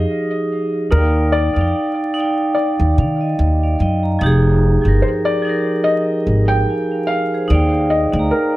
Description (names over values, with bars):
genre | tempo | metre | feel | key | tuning
lo-fi hip hop | 73 BPM | 4/4 | swing 55% on 16ths | Eb major | A4 = 439 Hz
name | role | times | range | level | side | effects
felt-muted upright piano | melody | 0.0-8.6 s | Bb4 to G5 | -22 LUFS | left 2 dB | low-pass filter, tape echo
vibraphone with medium hard mallets | accompaniment | 0.0-8.6 s | F3 to Bb5 | -18 LUFS | right 1 dB | cassette tape, low-pass filter, plate reverb
upright bass | bass | 0.0-8.3 s | F1 to Eb3 | -15 LUFS | equal | none
room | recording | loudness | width
light reverb | vinyl crackle | -14 LUFS | side -17 dB against mid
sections
0.0-8.6 A section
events
none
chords
0.0 Fm9; 0.9 Ebmaj9; 4.2 Fm9; 7.5 Ebmaj9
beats
0.10 | 0.92 1.74 2.57 3.39 | 4.21 5.03 5.85 6.68 | 7.50 8.32